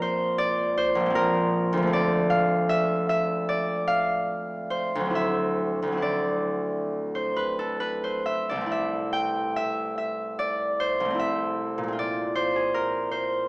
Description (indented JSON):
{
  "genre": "classical, solo harp piece",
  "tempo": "66-79 BPM",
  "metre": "4/4",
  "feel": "rubato",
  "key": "unclear",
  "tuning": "A4 = 440 Hz",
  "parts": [
    { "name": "concert harp", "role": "solo", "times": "0.0-13.5 s", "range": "Bb1 to G5", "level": "-23 LUFS", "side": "equal", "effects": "none" }
  ],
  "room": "moderate recital hall reverb, RT60 1.3 s",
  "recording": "small speaker sound",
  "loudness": "-23 LUFS",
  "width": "side -28 dB against mid",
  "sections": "0.0-13.5 A section",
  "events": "none",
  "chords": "0.0 Bb9; 1.9 Dm7; 5.1 D9; 8.7 C6; 12.0 Bb9"
}